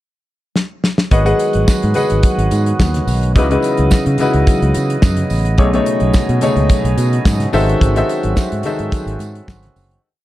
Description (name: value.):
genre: disco.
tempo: 108 BPM.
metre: 4/4.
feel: straight.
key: unclear.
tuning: A4 = 440 Hz.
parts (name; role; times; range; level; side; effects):
damped 70s drum kit; drums; 0.6-10.0 s; hi-hat, kick drum, snare drum; -15 LUFS; equal; none.
clear grand piano; accompaniment; 1.1-10.1 s; B2 to F#5; -17 LUFS; left 2 dB; none.
percussive tonewheel organ; sustained chords; 1.1-10.0 s; C#3 to D#5; -23 LUFS; right 3 dB; overdrive, lush chorus.
fingered electric bass; bass; 1.1-10.0 s; F#1 to C#3; -16 LUFS; equal; none.
congas; percussion; 1.1-9.9 s; none; -27 LUFS; equal; none.
tambourine; percussion; 1.4-9.9 s; none; -35 LUFS; right 9 dB; none.
room: little or no reverb.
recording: dark, warm production.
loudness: -12 LUFS.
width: side -15 dB against mid.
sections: 0.0-1.1 pickup bar; 1.1-10.0 verse.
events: drum fill 0.6-1.1; fade-out 7.8-10.0; grand piano fill 9.2-10.0.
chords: 0.0 N.C.; 1.1 G#m7; 3.3 C#m11; 5.6 B13; 7.5 G#7b9b13.